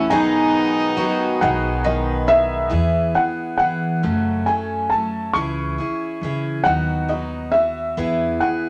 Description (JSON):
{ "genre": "acoustic folk duo or small band", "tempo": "46 BPM (dotted quarters)", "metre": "6/8", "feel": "straight", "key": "E major", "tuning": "A4 = 442 Hz", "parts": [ { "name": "felt-muted upright piano", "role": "melody", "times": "0.0-8.7 s", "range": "D#5 to C#6", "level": "-23 LUFS", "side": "equal", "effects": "none" }, { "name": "rich fiddle", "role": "second line", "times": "0.0-1.8 s", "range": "D#4", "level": "-26 LUFS", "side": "equal", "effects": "none" }, { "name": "picked steel-string acoustic guitar", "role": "accompaniment", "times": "0.0-8.7 s", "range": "F#2 to A4", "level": "-27 LUFS", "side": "equal", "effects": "none" }, { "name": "mellow accordion", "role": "sustained chords", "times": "0.0-2.7 s", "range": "D#3 to B3", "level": "-29 LUFS", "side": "equal", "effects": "none" }, { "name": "picked twelve-string acoustic guitar", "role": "arpeggios", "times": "0.0-2.7 s", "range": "D#3 to F#4", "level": "-25 LUFS", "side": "equal", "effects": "none" }, { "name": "upright bass", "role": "bass", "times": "0.0-8.4 s", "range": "B1 to E3", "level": "-28 LUFS", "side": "equal", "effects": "none" } ], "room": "moderate studio reverb, RT60 0.6 s", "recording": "none", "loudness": "-20 LUFS", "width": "mono", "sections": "0.0-2.7 A section; 2.7-8.7 B section", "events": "none", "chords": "0.1 B6; 2.7 E; 4.0 F#m; 5.4 C#m; 6.7 B/D#; 8.0 E", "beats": "| 0.11 1.42 | 2.73 4.04 | 5.35 6.66 | 7.98" }